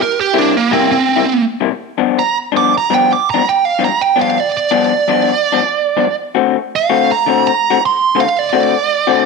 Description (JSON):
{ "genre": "blues", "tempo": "110 BPM", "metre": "4/4", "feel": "swing 63% on 8ths", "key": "unclear", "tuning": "A4 = 440 Hz", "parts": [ { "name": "biting lead guitar", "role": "melody", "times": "0.0-9.3 s", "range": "Bb3 to D6", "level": "-13 LUFS", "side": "right 7 dB", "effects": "overdrive, slapback echo" }, { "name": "electric guitar through a small old amp", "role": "riff", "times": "0.3-9.3 s", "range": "G2 to F#4", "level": "-16 LUFS", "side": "left 15 dB", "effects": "warbly pitch drift" } ], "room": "wet echo chamber reverb, RT60 1.2 s", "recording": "1960s-style stereo with parts hard left and right", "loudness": "-12 LUFS", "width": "side -4 dB against mid", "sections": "0.0-9.3 A section", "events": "lead electric guitar solo 0.0-9.3", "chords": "0.0 C7; 1.8 G7; 6.2 D7" }